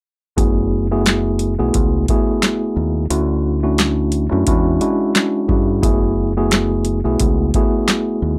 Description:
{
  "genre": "hip hop, boom-bap hip-hop",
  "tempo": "88 BPM",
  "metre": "4/4",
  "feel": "swing 57% on 16ths",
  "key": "F# minor",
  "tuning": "A4 = 440 Hz",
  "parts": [
    { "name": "mellow tine electric piano", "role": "accompaniment", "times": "0.4-8.4 s", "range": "G#3 to G#4", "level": "-20 LUFS", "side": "equal", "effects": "high-pass filter, low-pass filter" },
    { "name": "deep dub fingered electric bass", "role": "bass", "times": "0.4-8.4 s", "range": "F#1 to G2", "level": "-22 LUFS", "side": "equal", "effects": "tube saturation" },
    { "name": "booming analog drum machine", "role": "drums", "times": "0.4-8.1 s", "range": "handclaps, hi-hat, kick drum, snare drum", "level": "-20 LUFS", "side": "equal", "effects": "none" }
  ],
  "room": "little or no reverb",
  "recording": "dry, gritty hardware recording, transformer saturation",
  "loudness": "-17 LUFS",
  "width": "mono",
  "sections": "0.4-8.4 A section",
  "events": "none",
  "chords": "0.4 F#m11; 3.1 Dmaj9; 4.5 E13; 5.8 F#m11",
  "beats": "| 0.38 1.06 1.74 2.42 | 3.10 3.79 4.47 5.15 | 5.83 6.51 7.20 7.88"
}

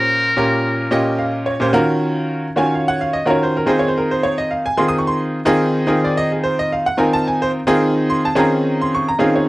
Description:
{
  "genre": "jazz",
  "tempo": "109 BPM",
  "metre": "4/4",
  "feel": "straight",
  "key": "Eb dorian",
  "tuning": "A4 = 437 Hz",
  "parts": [
    { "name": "trumpet with metal mute", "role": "melody", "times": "0.0-1.4 s", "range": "Bb4", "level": "-18 LUFS", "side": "left 1 dB", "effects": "slapback echo" },
    { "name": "bright concert grand piano", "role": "accompaniment", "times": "0.0-9.5 s", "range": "Bb2 to Eb6", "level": "-15 LUFS", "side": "equal", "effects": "none" }
  ],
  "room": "light reverb",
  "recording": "dry, close 1970s-style studio recording",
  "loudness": "-15 LUFS",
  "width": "side -19 dB against mid",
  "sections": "0.0-1.8 A section; 1.8-9.5 B section",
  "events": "grand piano fill 0.7-1.8",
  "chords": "0.0 Bbm69; 1.8 Ebm9; 3.7 Eb13sus4; 5.9 Fm7/Eb; 8.4 Eb13sus4",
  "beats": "0.10 0.65 1.20 | 1.75 2.30 2.85 3.41 | 3.96 4.51 5.06 5.61 | 6.16 6.71 7.26 7.81 | 8.36 8.91 9.47"
}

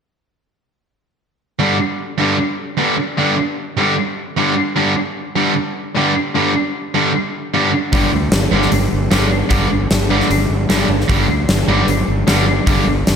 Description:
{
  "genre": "hard rock",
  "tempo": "152 BPM",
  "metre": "4/4",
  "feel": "straight",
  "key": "unclear",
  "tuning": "A4 = 438 Hz",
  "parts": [
    { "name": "high-gain distorted guitar", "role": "riff", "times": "1.6-12.8 s", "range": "G2 to G3", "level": "-18 LUFS", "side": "right 8 dB", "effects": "distortion" },
    { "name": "tight distorted guitar", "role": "riff", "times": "1.6-12.8 s", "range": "G2 to G3", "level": "-19 LUFS", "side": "left 8 dB", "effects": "distortion, slapback echo" },
    { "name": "fuzz fingered electric bass", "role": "bass", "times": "7.9-13.2 s", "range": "G1 to D2", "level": "-18 LUFS", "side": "equal", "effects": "overdrive" },
    { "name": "huge arena drum kit", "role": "drums", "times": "7.9-13.2 s", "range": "hi-hat, kick drum, snare drum", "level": "-17 LUFS", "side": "equal", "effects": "none" }
  ],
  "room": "moderate lush hall reverb, RT60 2.2 s",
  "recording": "big arena sound",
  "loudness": "-14 LUFS",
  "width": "side -7 dB against mid",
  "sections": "1.6-13.2 A section",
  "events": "none",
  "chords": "1.6 G5",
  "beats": "| 1.60 1.99 2.39 2.79 | 3.18 3.58 3.97 4.37 | 4.76 5.16 5.56 5.95 | 6.35 6.74 7.14 7.54 | 7.93 8.33 8.72 9.12 | 9.51 9.91 10.31 10.70 | 11.10 11.49 11.89 12.29 | 12.68 13.08"
}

